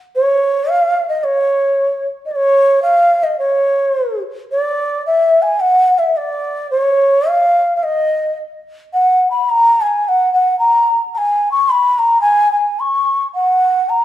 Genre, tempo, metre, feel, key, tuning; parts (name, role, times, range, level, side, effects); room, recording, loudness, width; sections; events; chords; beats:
alpine folk; 109 BPM; 2/4; swing 53% on 8ths; A4 = 437 Hz
mellow bansuri; solo; 0.2-14.0 s; C#5 to C#6; -12 LUFS; equal
wet stone room reverb, RT60 1.4 s; band playing live in one room; -12 LUFS; side -13 dB against mid
0.1-14.0 A section
| 0.12 0.68 | 1.23 1.77 | 2.32 2.86 | 3.40 3.95 | 4.51 5.07 | 5.62 6.17 | 6.72 7.27 | 7.82 8.38 | 8.94 9.50 | 10.06 10.61 | 11.16 11.71 | 12.27 12.82 | 13.38 13.94